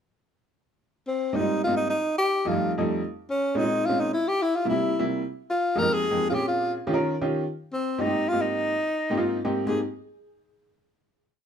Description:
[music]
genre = jazz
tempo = 216 BPM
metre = 4/4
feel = straight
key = Ab major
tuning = A4 = 440 Hz
[part]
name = breathy tenor saxophone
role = melody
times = 1.1-9.8 s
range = C4 to Bb4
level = -25 LUFS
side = left 1 dB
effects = plate reverb
[part]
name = warm upright piano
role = accompaniment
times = 1.3-9.8 s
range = F2 to Bb4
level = -26 LUFS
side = right 1 dB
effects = none
[sound]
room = moderate studio reverb, RT60 0.5 s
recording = none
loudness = -23 LUFS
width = side -8 dB against mid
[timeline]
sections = 0.8-9.7 A section; 9.7-10.8 final chord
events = none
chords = 0.8 Abmaj9; 1.9 F7; 3.0 Bbm7; 4.1 C7; 5.2 Fm11; 6.3 Bbm7; 6.9 Eb7; 7.4 Abmaj9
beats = | 0.78 1.06 1.33 1.61 | 1.89 2.17 2.45 2.72 | 3.00 3.28 3.56 3.83 | 4.11 4.39 4.66 4.94 | 5.22 5.49 5.77 6.05 | 6.33 6.60 6.88 7.16 | 7.44 7.71 7.99 8.27 | 8.55 8.83 9.11 9.39 | 9.67

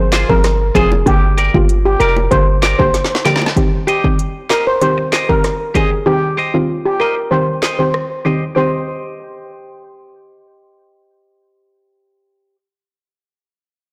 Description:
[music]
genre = dancehall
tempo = 96 BPM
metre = 4/4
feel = straight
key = C minor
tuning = A4 = 440 Hz
[part]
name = soft round pluck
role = accompaniment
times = 0.0-12.5 s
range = D3 to Ab4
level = -21 LUFS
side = equal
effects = chorus, low-pass filter
[part]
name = clean electric guitar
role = arpeggios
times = 0.0-12.6 s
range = F4 to Eb5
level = -24 LUFS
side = equal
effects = low-pass filter
[part]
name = warm 808-style bass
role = bass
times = 0.0-2.9 s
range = F1 to Ab1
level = -19 LUFS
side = equal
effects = none
[part]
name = afro-pop drum kit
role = drums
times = 0.1-8.1 s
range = handclaps, hi-hat, kick drum, rim click, snare drum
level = -20 LUFS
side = equal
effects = none
[part]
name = bongos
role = percussion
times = 0.1-3.6 s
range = none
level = -27 LUFS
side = equal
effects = none
[part]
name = steel pan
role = melody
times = 0.3-10.4 s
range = F4 to C5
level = -19 LUFS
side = equal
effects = low-pass filter, delay
[sound]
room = light reverb, digital ambience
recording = blown-out, overdriven recording, overdrive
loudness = -15 LUFS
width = mono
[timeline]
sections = 0.0-3.6 A section; 3.6-8.6 B section; 8.6-11.1 C section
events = drum fill 2.9-3.6; filter sweep 3.6-8.6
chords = 0.0 Fm; 1.1 Gm; 3.6 Cm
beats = 0.44 | 1.06 1.69 2.31 2.94 | 3.56 4.19 4.81 5.44 | 6.06 6.69 7.31 7.94 | 8.56 9.19 9.81 10.44

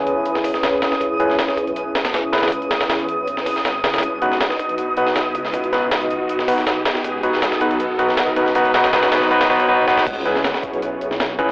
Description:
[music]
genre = drum and bass, jungle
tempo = 159 BPM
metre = 4/4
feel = straight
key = C# minor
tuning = A4 = 443 Hz
[part]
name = soft string machine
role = sustained chords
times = 0.0-11.5 s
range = B3 to D#5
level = -24 LUFS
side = equal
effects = ensemble chorus
[part]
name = overdriven tine electric piano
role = stabs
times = 0.0-11.5 s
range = B3 to B4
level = -19 LUFS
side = equal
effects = low-pass filter, dub echo
[part]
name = detuned saw bass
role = bass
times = 0.0-11.5 s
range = G#1 to E2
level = -35 LUFS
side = equal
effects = none
[part]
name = riser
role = sound effects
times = 1.6-9.7 s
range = none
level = -29 LUFS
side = equal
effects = none
[part]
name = twinkling granular texture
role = texture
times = 0.0-9.7 s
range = D#6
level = -27 LUFS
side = right 1 dB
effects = built-in reverb
[part]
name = breakbeat sampler-style drum kit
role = drums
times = 0.1-11.5 s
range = crash cymbal, hi-hat, kick drum, snare drum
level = -21 LUFS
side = equal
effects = high-pass filter on snare, high-pass filter on hats, high-pass filter on kick, high-pass filter on cymbals
[sound]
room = moderate plate reverb, RT60 1.2 s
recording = dry, gritty hardware recording, vinyl crackle, telephone sound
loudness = -16 LUFS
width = side -25 dB against mid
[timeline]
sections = 0.0-10.1 A section; 10.1-11.5 B section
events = build-up 0.0-10.1; filter sweep on string machine 0.0-10.1; filter sweep on tine electric piano 0.0-10.1; drum fill 9.9; drop 10.1-11.5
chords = 0.0 C#m7; 4.0 B; 10.1 C#m7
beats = 0.26 0.63 | 1.01 1.39 1.76 2.14 | 2.52 2.90 3.27 3.65 | 4.03 4.41 4.78 5.16 | 5.54 5.92 6.29 6.67 | 7.05 7.42 7.80 8.18 | 8.56 8.94 9.31 9.69 | 10.07 10.44 10.82 11.20

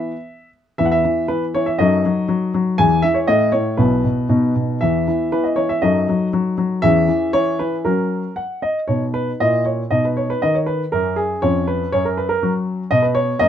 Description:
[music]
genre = classical-period piano sonatina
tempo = 119 BPM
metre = 2/4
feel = straight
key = E major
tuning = A4 = 440 Hz
[part]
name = warm baby grand piano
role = solo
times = 0.0-13.5 s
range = B1 to G#5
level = -16 LUFS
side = left 1 dB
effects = none
[sound]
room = light reverb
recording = close, detailed microphones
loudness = -16 LUFS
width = side -9 dB against mid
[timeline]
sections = 0.8-8.9 A section; 8.9-13.5 B section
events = none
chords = 0.0 E5; 1.8 D#dim/F#; 2.8 E; 3.3 A; 3.8 Bsus4; 4.3 B; 4.8 E5; 5.8 D#dim/F#; 6.8 C#m/E; 7.9 F#; 8.9 B; 9.4 A#dim; 9.9 B; 10.9 F#; 11.4 C#7/E#; 11.9 F#5; 12.9 N.C.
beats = 0.26 | 0.78 1.29 | 1.79 2.29 | 2.79 3.29 | 3.80 4.32 | 4.83 5.34 | 5.83 6.33 | 6.83 7.34 | 7.86 8.38 | 8.90 9.41 | 9.92 10.43 | 10.93 11.43 | 11.93 12.42 | 12.92 13.41

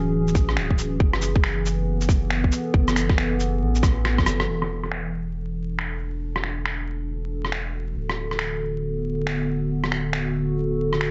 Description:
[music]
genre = future garage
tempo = 138 BPM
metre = 4/4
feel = swing 63% on 16ths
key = unclear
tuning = A4 = 439 Hz
[part]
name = warbly tape-like pad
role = sustained chords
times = 0.0-11.1 s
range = D3 to A4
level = -29 LUFS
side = equal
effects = chorus, built-in reverb, sidechain pumping
[part]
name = soft dub sub bass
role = bass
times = 0.0-11.1 s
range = D1 to A1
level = -30 LUFS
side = equal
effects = transformer saturation, sidechain pumping
[part]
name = electronic kick drum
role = drums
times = 0.3-4.2 s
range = none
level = -23 LUFS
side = equal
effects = none
[part]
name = electronic shaker, rim click and finger snaps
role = drums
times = 0.3-11.1 s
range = none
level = -30 LUFS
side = equal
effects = low-pass filter on snare, low-pass filter on perc, low-pass filter on room
[sound]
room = little or no reverb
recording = dry, gritty hardware recording, vinyl crackle, nothing above 7.8 kHz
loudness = -24 LUFS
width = mono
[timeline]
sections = 0.0-4.5 A section; 4.5-11.1 B section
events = drum fill 3.8-4.5; band accent 4.4; filter sweep on ambient pad 4.5-11.1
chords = 0.0 Dmaj9#11; 1.0 F#m11; 4.5 E9sus4; 8.0 Bm7/D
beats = 0.14 0.57 | 1.01 1.44 1.88 2.31 | 2.75 3.18 3.62 4.05 | 4.49 4.92 5.36 5.79 | 6.22 6.66 7.09 7.53 | 7.96 8.40 8.83 9.27 | 9.70 10.14 10.57 11.01

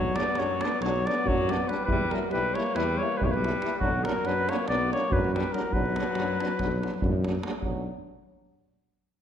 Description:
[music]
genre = balkan folk, Balkan brass band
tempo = 280 BPM (eighths)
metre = 9/8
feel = straight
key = B harmonic minor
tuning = A4 = 440 Hz
[part]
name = warm flugelhorn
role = melody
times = 0.0-7.3 s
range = F#4 to D5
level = -29 LUFS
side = equal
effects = none
[part]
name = clear alto saxophone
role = second line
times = 0.0-7.3 s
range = D3 to B3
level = -32 LUFS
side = left 4 dB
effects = none
[part]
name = clear French horn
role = accompaniment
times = 0.0-7.9 s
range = D4 to E4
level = -36 LUFS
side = left 5 dB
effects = none
[part]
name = mellow tuba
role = bass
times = 0.0-7.9 s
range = B1 to F#2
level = -32 LUFS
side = equal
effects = none
[part]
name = clear euphonium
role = accompaniment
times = 0.2-7.9 s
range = F#3 to G3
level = -37 LUFS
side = right 4 dB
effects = none
[part]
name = davul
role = percussion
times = 0.2-7.9 s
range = none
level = -31 LUFS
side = right 2 dB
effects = none
[sound]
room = wet recital hall reverb, RT60 1.3 s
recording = none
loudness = -24 LUFS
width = side -9 dB against mid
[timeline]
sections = 0.0-7.7 A section; 7.7-9.2 B section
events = none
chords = 0.0 Bm; 1.9 Em; 3.8 Bm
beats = 0.14 0.35 0.57 0.79 1.00 1.22 1.43 1.65 | 1.86 2.08 2.29 2.51 2.73 2.94 3.15 3.37 3.58 | 3.80 4.01 4.23 4.44 4.66 4.87 5.09 5.30 5.52 | 5.73 5.94 6.16 6.37 6.59 6.80 7.01 7.23 7.44 | 7.66 7.87

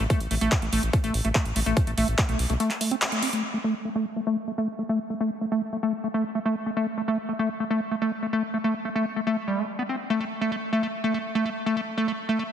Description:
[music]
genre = psychedelic trance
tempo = 144 BPM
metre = 4/4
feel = straight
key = A minor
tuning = A4 = 443 Hz
[part]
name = liquid acid bass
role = riff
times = 0.0-12.4 s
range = G3 to C4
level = -25 LUFS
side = equal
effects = chorus, auto-pan, vintage 12-bit sampler grit, sidechain pumping, dub echo
[part]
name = round analog bass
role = bass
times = 0.0-2.6 s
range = A1 to B1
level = -27 LUFS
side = equal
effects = none
[part]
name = big-room dance drum kit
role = drums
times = 0.0-3.4 s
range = handclaps, hi-hat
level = -29 LUFS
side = equal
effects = none
[part]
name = electronic kick drum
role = drums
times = 0.1-2.3 s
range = none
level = -24 LUFS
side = equal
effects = none
[sound]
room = moderate lush hall reverb, RT60 1.9 s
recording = heavily compressed radio sound, multiband compression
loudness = -24 LUFS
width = side -9 dB against mid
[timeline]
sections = 0.0-3.4 A section; 3.4-12.5 B section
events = band accent 3.0; filter sweep on acid bass 3.4-12.5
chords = none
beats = | 0.10 0.52 0.93 1.35 | 1.77 2.18 2.60 3.02 | 3.43 3.85 4.27 4.68 | 5.10 5.52 5.93 6.35 | 6.77 7.18 7.60 8.02 | 8.43 8.85 9.27 9.68 | 10.10 10.52 10.93 11.35 | 11.77 12.18

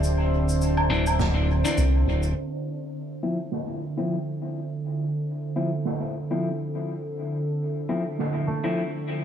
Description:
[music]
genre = ambient dub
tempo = 103 BPM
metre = 4/4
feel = swing 57% on 16ths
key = unclear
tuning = A4 = 443 Hz
[part]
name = warbly tape-like pad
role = sustained chords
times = 0.0-9.2 s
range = D3 to C5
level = -29 LUFS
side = right 1 dB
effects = chorus, built-in reverb
[part]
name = concert harp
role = arpeggios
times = 0.0-1.8, 8.5-9.2 s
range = A3 to A5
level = -36 LUFS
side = right 2 dB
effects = dub echo
[part]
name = round analog bass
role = bass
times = 0.0-2.3 s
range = D1 to C2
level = -22 LUFS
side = equal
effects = none
[part]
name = cabasa, woodblock and snare drum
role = drums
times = 0.0-8.3 s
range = none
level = -32 LUFS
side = right 1 dB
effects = low-pass filter on snare, low-pass filter on perc, low-pass filter on room, dub echo
[part]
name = electric guitar at the edge of break-up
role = stabs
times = 0.9-8.8 s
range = E3 to E4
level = -30 LUFS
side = left 2 dB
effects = dub echo
[part]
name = electronic kick drum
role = drums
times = 1.2-1.3 s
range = none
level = -28 LUFS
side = left 1 dB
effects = none
[sound]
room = light reverb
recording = low-pass filter, small room ambience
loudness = -24 LUFS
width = side -9 dB against mid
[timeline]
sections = 0.0-2.4 A section; 2.4-9.2 B section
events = filter sweep on drum 2.4-9.2; filter sweep 2.4-9.2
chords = 0.0 D7(no3); 2.4 Dm7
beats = | 0.03 0.61 1.20 1.78 | 2.36 2.94 3.52 4.11 | 4.69 5.27 5.86 6.44 | 7.02 7.60 8.19 8.77

